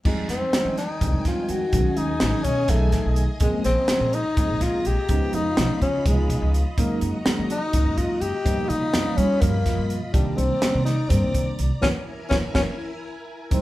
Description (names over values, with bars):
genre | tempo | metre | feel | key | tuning
electric jazz fusion | 250 BPM (eighths) | 7/8 | straight | unclear | A4 = 442 Hz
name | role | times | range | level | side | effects
tine electric piano | accompaniment | 0.0-13.6 s | B2 to G#4 | -28 LUFS | right 2 dB | medium stereo tremolo, phaser
mellow tenor saxophone | melody | 0.1-13.6 s | G3 to G4 | -25 LUFS | left 2 dB | none
string machine, violins | sustained chords | 0.1-13.6 s | Eb3 to Cb6 | -35 LUFS | equal | ensemble chorus
upright bass | bass | 0.1-13.6 s | Gb1 to G3 | -25 LUFS | equal | none
crisp fusion drum kit | drums | 0.1-13.6 s | crash cymbal, hi-hat, kick drum, snare drum | -25 LUFS | equal | none
room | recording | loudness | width
moderate large studio reverb, RT60 1.2 s | band playing live in one room | -20 LUFS | side -16 dB against mid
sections
0.1-13.5 A section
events
band accent 11.8-13.5; drum fill 12.1-13.5; tine electric piano fill 12.8-13.5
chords
0.1 Fm9; 1.7 B13; 3.4 Bbm7; 5.1 Db9; 6.8 Gb6; 8.5 G7alt; 10.1 Cm9; 11.8 Gb9